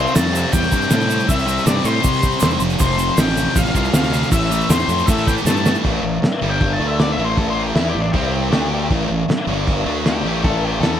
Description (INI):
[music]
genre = garage rock duo or trio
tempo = 158 BPM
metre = 4/4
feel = straight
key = A minor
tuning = A4 = 442 Hz
[part]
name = octave-fuzz lead guitar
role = melody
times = 0.0-11.0 s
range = D4 to A5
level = -23 LUFS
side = left 4 dB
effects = distortion
[part]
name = thick fuzz guitar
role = riff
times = 0.0-11.0 s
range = F2 to E4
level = -20 LUFS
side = right 1 dB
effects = distortion
[part]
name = fuzz fingered electric bass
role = bass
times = 0.0-11.0 s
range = F1 to C3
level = -22 LUFS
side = equal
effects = overdrive, tube saturation
[part]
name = tube shaker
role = percussion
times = 0.1-5.8 s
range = none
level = -31 LUFS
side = right 7 dB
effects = none
[part]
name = cloth-damped thuddy drum kit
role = drums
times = 0.2-10.9 s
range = crash cymbal, hi-hat, kick drum, snare drum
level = -20 LUFS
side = equal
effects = none
[sound]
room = little or no reverb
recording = none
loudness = -15 LUFS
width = side -10 dB against mid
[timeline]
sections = 0.0-5.8 A section; 5.8-11.0 B section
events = drum fill 5.5-5.8; lead electric guitar solo 5.8-11.0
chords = 0.0 C5; 2.6 F; 4.3 Am; 5.8 A5; 6.4 G5; 6.8 D5; 7.2 A5; 8.1 C5; 8.5 D5; 8.9 A5; 9.5 G5; 9.9 D5; 10.2 A5